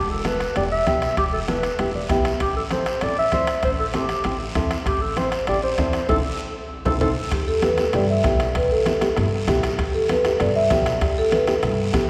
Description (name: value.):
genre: latin, cumbia.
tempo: 195 BPM.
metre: 4/4.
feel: straight.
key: unclear.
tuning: A4 = 439 Hz.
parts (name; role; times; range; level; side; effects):
dark clarinet; second line; 0.0-7.1 s; G4 to E5; -26 LUFS; equal; none.
upright bass; bass; 0.0-12.1 s; E1 to G2; -30 LUFS; equal; none.
nylon-string guitar; accompaniment; 0.2-12.1 s; B3 to E5; -29 LUFS; equal; none.
bombo; percussion; 0.2-12.1 s; none; -30 LUFS; equal; none.
congas; percussion; 0.2-12.1 s; none; -35 LUFS; equal; none.
timbales; percussion; 0.2-12.1 s; none; -36 LUFS; equal; none.
guiro; percussion; 0.3-12.1 s; none; -38 LUFS; equal; none.
marimba with medium mallets; melody; 7.3-11.9 s; G4 to E5; -23 LUFS; equal; none.
room: wet church reverb, RT60 3.4 s.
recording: recorded in a church or concert hall.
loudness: -21 LUFS.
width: mono.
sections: 0.0-7.3 A section; 7.3-12.1 B section.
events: clarinet solo 0.0-7.3; nylon-string guitar fill 1.8-2.4; drum fill 6.1-7.3; band accent 6.1-7.3.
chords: 0.0 Em; 2.4 Am; 7.3 Em.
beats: 0.25 0.56 0.87 | 1.17 1.48 1.79 2.10 | 2.40 2.71 3.02 3.32 | 3.63 3.94 4.25 4.55 | 4.86 5.17 5.48 5.78 | 6.09 6.40 6.71 7.01 | 7.32 7.63 7.94 8.25 | 8.55 8.86 9.17 9.48 | 9.78 10.09 10.40 10.71 | 11.02 11.32 11.63 11.94.